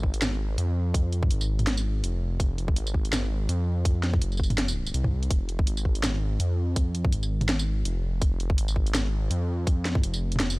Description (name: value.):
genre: half-time drum and bass.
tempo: 165 BPM.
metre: 4/4.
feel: swing 56% on 16ths, half-time.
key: F phrygian.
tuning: A4 = 440 Hz.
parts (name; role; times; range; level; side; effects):
dark detuned saw bass; bass; 0.0-10.6 s; F1 to F2; -26 LUFS; equal; tube saturation.
electronic kick drum; drums; 0.0-10.0 s; none; -24 LUFS; equal; none.
drum and bass drum kit; drums; 0.1-10.6 s; hi-hat, snare drum, tambourine, toms; -29 LUFS; equal; none.
room: digital ambience.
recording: dry, gritty hardware recording, transformer saturation.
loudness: -24 LUFS.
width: side -23 dB against mid.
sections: 0.0-10.6 A section.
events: none.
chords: none.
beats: 0.21 0.58 | 0.94 1.30 1.67 2.03 | 2.40 2.76 3.12 3.49 | 3.85 4.21 4.58 4.94 | 5.30 5.67 6.03 6.40 | 6.76 7.12 7.49 7.85 | 8.21 8.58 8.94 9.30 | 9.67 10.03 10.40.